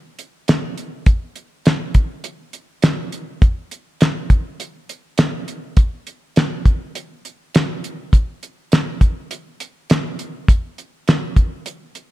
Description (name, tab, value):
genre	blues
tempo	102 BPM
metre	4/4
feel	swing 55% on 16ths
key	none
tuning	none
part	damped 70s drum kit	drums	0.2-12.1 s	hi-hat, kick drum, snare drum	-15 LUFS	equal	none
room	light reverb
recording	none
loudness	-16 LUFS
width	side -17 dB against mid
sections	0.0-12.1 A section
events	none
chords	none